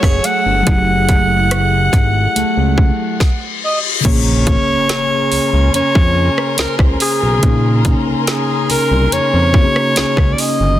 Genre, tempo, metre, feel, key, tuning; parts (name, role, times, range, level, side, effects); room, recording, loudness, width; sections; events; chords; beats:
contemporary R&B; 71 BPM; 4/4; straight; Bb minor; A4 = 438 Hz
breathy alto saxophone; melody; 0.0-10.8 s; Ab4 to Gb5; -17 LUFS; equal
mellow tine electric piano; accompaniment; 0.0-10.8 s; Db3 to Ab5; -21 LUFS; left 2 dB; slow stereo tremolo
warm studio string section; sustained chords; 0.0-10.8 s; A3 to Gb6; -26 LUFS; left 4 dB; sidechain pumping
picked plugged-in steel-string acoustic guitar; arpeggios; 0.0-10.8 s; Gb3 to C5; -23 LUFS; right 4 dB
fat analog bass; bass; 0.0-10.8 s; Gb1 to F2; -16 LUFS; equal
trap drum kit; drums; 0.0-10.6 s; crash cymbal, hi-hat, kick drum, rim click, snare drum; -15 LUFS; equal
reverse cymbal and impact; sound effects; 3.0-7.4 s; -23 LUFS; left 5 dB
little or no reverb; dense, heavily limited modern master; -12 LUFS; side -13 dB against mid
0.0-4.0 A section; 4.0-10.8 B section
reverse cymbal 3.0-4.0; stop 3.2-4.0; impact 4.0-7.4
0.0 Gbm9; 4.0 Bbm9
| 0.67 1.51 2.36 3.20 | 4.05 4.89 5.74 6.58 | 7.43 8.27 9.12 9.96